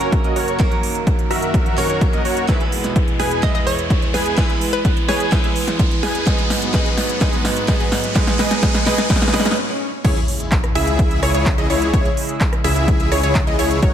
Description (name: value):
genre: EDM, festival progressive house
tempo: 127 BPM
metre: 4/4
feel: straight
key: unclear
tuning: A4 = 440 Hz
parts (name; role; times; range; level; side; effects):
- picked steel-string acoustic guitar; accompaniment; 0.0-9.6 s; F#3 to B4; -24 LUFS; right 4 dB; sidechain pumping, digital delay
- lush unison pad; sustained chords; 0.0-13.9 s; E2 to A#4; -28 LUFS; left 1 dB; chorus, sidechain pumping
- dense compressed supersaw; riff; 0.0-13.9 s; E4 to G#5; -23 LUFS; equal; sidechain pumping, low-pass filter, digital delay
- big-room dance drum kit; drums; 0.0-13.9 s; crash cymbal, handclaps, hi-hat, rim click, snare drum; -24 LUFS; equal; overdrive
- riser, swell and impact; sound effects; 0.2-11.9 s; none; -27 LUFS; left 1 dB; none
- electronic kick drum; drums; 0.1-13.9 s; none; -18 LUFS; equal; overdrive
- hollow square pluck; melody; 3.4-5.4 s; B4 to D#5; -25 LUFS; left 1 dB; chorus, digital delay
- wide unison pluck; arpeggios; 10.0-13.9 s; C#5 to E5; -25 LUFS; equal; sidechain pumping, digital delay
- detuned saw bass; bass; 10.0-13.9 s; F#1 to C#2; -21 LUFS; equal; sidechain pumping
room: light reverb, digital ambience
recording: none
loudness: -15 LUFS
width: side -9 dB against mid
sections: 0.0-10.0 A section; 10.0-13.9 B section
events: build-up 0.0-10.0; filter sweep on analog synth pad 0.0-10.0; riser 0.2-9.6; drum fill 2.5-9.6; swell 9.1-10.0; stop 9.6-10.0; drop 10.0-13.9; impact 10.0-11.9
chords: 0.0 F#; 2.5 E; 6.3 G#m7; 10.0 C#m